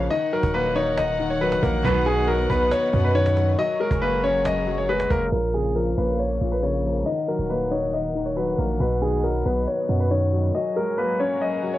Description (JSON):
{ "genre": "hip hop, trap", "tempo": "138 BPM", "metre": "4/4", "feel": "half-time", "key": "Bb phrygian", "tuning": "A4 = 440 Hz", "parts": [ { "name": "clear concert grand piano", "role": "melody", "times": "0.0-11.8 s", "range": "Ab4 to Eb5", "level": "-24 LUFS", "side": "equal", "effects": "cassette tape, tape echo" }, { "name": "felt-muted upright piano", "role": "accompaniment", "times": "0.0-11.8 s", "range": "Bb2 to Eb4", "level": "-27 LUFS", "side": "left 5 dB", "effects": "cassette tape" }, { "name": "dark studio string section", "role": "sustained chords", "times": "0.0-11.8 s", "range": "Eb3 to Gb5", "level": "-32 LUFS", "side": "equal", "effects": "cassette tape" }, { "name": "long sustained 808-style bass", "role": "bass", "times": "0.0-10.5 s", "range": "Eb1 to F#2", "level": "-25 LUFS", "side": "right 1 dB", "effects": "none" }, { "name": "cajon", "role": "drums", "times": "0.1-5.2 s", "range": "none", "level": "-30 LUFS", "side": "right 2 dB", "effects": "cassette tape" }, { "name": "clear studio string section", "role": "stabs", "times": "1.8-2.3 s", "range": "B2 to F#3", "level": "-31 LUFS", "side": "right 7 dB", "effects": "none" } ], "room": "small room ambience", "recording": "home recording on cassette, low-pass filter", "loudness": "-20 LUFS", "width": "side -14 dB against mid", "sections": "0.0-5.3 A section; 5.3-11.8 B section", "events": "filter sweep 5.3-11.8", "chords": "0.1 Ebm; 1.8 B; 3.6 Gbadd9; 5.3 Bbm; 7.1 Ebm; 8.8 B; 10.5 Gbadd9" }